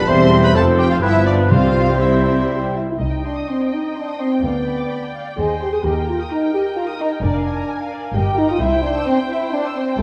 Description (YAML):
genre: quick classical-period movement for symphony orchestra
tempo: 128 BPM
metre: 3/4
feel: rubato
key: C minor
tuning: A4 = 440 Hz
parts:
  - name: muted studio violin section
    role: melody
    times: 0.0-10.0 s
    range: D5 to C6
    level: -30 LUFS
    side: equal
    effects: none
  - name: mellow hollow silver concert flute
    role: second line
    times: 0.0-2.8 s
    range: B4 to E5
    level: -25 LUFS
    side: equal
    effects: none
  - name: warm clarinet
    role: second line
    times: 0.0-2.8 s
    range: D4 to C5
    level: -27 LUFS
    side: equal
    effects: none
  - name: muted studio viola section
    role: accompaniment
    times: 0.0-10.0 s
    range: F3 to Eb5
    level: -29 LUFS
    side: equal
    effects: none
  - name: mellow French horn section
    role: sustained chords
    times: 0.0-10.0 s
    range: A3 to Ab4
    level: -22 LUFS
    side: equal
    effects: none
  - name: muted studio cello section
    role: bass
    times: 0.0-10.0 s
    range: C2 to C3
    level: -25 LUFS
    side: equal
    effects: none
  - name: muted studio double bass section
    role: bass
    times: 0.0-10.0 s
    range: E1 to Eb2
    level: -25 LUFS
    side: equal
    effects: none
  - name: muted studio violin section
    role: second line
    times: 0.1-10.0 s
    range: D4 to E6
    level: -32 LUFS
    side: equal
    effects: none
  - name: warm oboe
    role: second line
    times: 0.1-2.7 s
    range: B4 to C5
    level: -27 LUFS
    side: equal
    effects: none
  - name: mellow bassoon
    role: accompaniment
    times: 0.1-2.7 s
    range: F3 to G3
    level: -29 LUFS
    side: equal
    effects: none
  - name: timpani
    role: percussion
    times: 1.5-2.2, 4.4-5.1 s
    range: C3 to D3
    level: -24 LUFS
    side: equal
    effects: none
room: wet scoring stage reverb, RT60 1.8 s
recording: none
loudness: -18 LUFS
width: mono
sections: 0.0-3.0 A section; 3.0-10.0 B section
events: none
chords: 0.1 C/E; 0.6 F; 1.0 G7; 1.5 C; 3.0 Cm; 4.4 G7/D; 5.4 Cm/Eb; 5.8 Eb; 7.2 Bb7/F; 8.1 Eb/G; 8.6 C